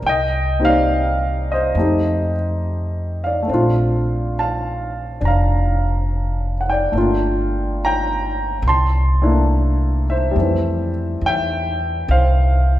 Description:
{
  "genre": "jazz ballad",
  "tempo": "70 BPM",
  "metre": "4/4",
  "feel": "swing 67% on 8ths",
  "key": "F major",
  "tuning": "A4 = 440 Hz",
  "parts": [
    { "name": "warm baby grand piano", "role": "accompaniment", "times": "0.0-12.8 s", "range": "E3 to C6", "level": "-19 LUFS", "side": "equal", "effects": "none" },
    { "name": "upright bass", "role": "bass", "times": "0.0-12.8 s", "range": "F1 to F2", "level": "-19 LUFS", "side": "equal", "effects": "none" }
  ],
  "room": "wet recital hall reverb, RT60 1.7 s",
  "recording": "recorded in a church or concert hall",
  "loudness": "-16 LUFS",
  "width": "side -14 dB against mid",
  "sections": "0.0-12.8 A section",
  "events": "none",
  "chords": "0.0 Cm7; 1.8 F13; 3.5 Bbmaj9; 6.9 Gm7; 8.6 C13; 10.3 Fmaj9",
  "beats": "| 0.04 0.90 1.76 2.62 | 3.49 4.35 5.21 6.07 | 6.93 7.78 8.64 9.49 | 10.35 11.20 12.06"
}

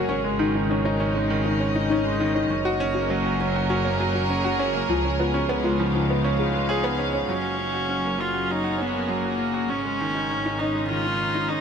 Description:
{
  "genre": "piano and strings electronica",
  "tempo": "100 BPM",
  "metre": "4/4",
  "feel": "straight",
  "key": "F# major",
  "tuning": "A4 = 440 Hz",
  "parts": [
    { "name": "warm chamber string section", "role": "sustained chords", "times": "0.0-11.6 s", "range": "C#3 to E#5", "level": "-29 LUFS", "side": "left 1 dB", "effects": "none" },
    { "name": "soft round pluck", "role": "arpeggios", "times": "0.0-7.2 s", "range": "D#4 to B5", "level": "-30 LUFS", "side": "left 3 dB", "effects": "chorus, cassette tape, tape echo" },
    { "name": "clear upright piano", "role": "riff", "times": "0.0-11.6 s", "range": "D#3 to G#4", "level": "-25 LUFS", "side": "right 2 dB", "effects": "tape echo" },
    { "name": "dark studio double bass section", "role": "bass", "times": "0.0-11.6 s", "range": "F#1 to C#2", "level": "-29 LUFS", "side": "left 1 dB", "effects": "none" },
    { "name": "rich viola", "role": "melody", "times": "7.3-11.6 s", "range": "A#3 to E#4", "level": "-26 LUFS", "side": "equal", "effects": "none" }
  ],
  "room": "moderate huge ambient reverb, RT60 7.5 s",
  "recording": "none",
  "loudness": "-21 LUFS",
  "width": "side -7 dB against mid",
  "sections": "0.0-7.3 A section; 7.3-11.6 B section",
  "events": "none",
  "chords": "0.1 C#sus2/G#; 2.5 F#; 4.9 C#7; 7.3 F#; 9.7 C#sus2/G#",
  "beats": "| 0.10 0.70 1.30 1.90 | 2.50 3.10 3.70 4.30 | 4.90 5.50 6.10 6.70 | 7.30 7.90 8.50 9.10 | 9.70 10.30 10.90 11.50"
}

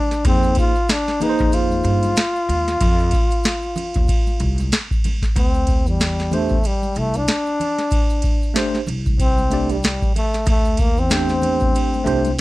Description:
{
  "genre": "hip hop, jazz-hop",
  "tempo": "94 BPM",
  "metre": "4/4",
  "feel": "swing 58% on 16ths",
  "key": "D minor",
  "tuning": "A4 = 440 Hz",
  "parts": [
    { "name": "breathy trombone", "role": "melody", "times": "0.0-12.4 s", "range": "G3 to F4", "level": "-22 LUFS", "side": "left 1 dB", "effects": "none" },
    { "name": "booming analog drum machine", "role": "drums", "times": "0.1-12.4 s", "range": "hi-hat, kick drum, ride cymbal, snare drum", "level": "-19 LUFS", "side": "equal", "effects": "none" },
    { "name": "maracas and congas", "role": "percussion", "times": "0.1-12.4 s", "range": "none", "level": "-34 LUFS", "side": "right 3 dB", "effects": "none" },
    { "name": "tine electric piano", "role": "accompaniment", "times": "0.2-2.2, 6.3-12.3 s", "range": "A3 to D5", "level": "-21 LUFS", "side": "right 1 dB", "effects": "medium stereo tremolo" },
    { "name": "upright bass", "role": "bass", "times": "0.2-12.3 s", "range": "C2 to G2", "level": "-22 LUFS", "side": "equal", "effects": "none" }
  ],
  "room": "light reverb",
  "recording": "none",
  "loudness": "-16 LUFS",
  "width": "side -18 dB against mid",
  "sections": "0.0-5.4 A section; 5.4-12.4 B section",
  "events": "trombone solo 5.4-12.4",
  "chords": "0.3 Fm7; 5.4 D9sus4",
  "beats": "| 0.26 0.89 1.53 2.17 | 2.81 3.45 4.09 4.72 | 5.36 6.00 6.64 7.28 | 7.92 8.55 9.19 9.83 | 10.47 11.11 11.74 12.38"
}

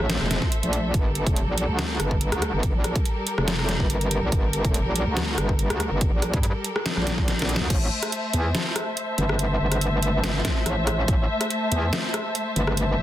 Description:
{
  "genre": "heavy wobble dubstep",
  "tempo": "142 BPM",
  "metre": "4/4",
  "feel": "swing 53% on 16ths, half-time",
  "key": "A phrygian",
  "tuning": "A4 = 439 Hz",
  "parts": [
    { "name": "rich studio string section", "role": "sustained chords", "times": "0.0-13.0 s", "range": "G3 to A5", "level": "-28 LUFS", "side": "left 1 dB", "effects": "sidechain pumping, low-pass filter" },
    { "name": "metallic wobble bass", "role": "bass", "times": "0.0-13.0 s", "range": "E1 to G2", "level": "-24 LUFS", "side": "equal", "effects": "chorus, overdrive" },
    { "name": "dubstep drum kit", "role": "drums", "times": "0.0-12.9 s", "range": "crash cymbal, hi-hat, rim click, snare drum", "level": "-27 LUFS", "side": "equal", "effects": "none" },
    { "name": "electronic kick drum", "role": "drums", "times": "0.4-7.8, 10.4-11.2 s", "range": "none", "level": "-24 LUFS", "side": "equal", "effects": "none" }
  ],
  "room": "digital ambience",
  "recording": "dense, heavily limited modern master",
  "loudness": "-21 LUFS",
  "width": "side -13 dB against mid",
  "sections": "0.0-7.7 A section; 7.7-13.0 A section",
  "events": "drop 0.0-7.7, 7.7-13.0; kick drops out 7.3-7.7; drum fill 7.3-7.7",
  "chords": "0.0 Am; 0.9 Gmadd9; 7.7 Am",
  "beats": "0.10 0.52 | 0.94 1.36 1.79 2.21 | 2.63 3.05 3.48 3.90 | 4.32 4.74 5.17 5.59 | 6.01 6.43 6.86 7.28 | 7.70 8.12 8.55 8.97 | 9.39 9.81 10.24 10.66 | 11.08 11.50 11.93 12.35 | 12.77"
}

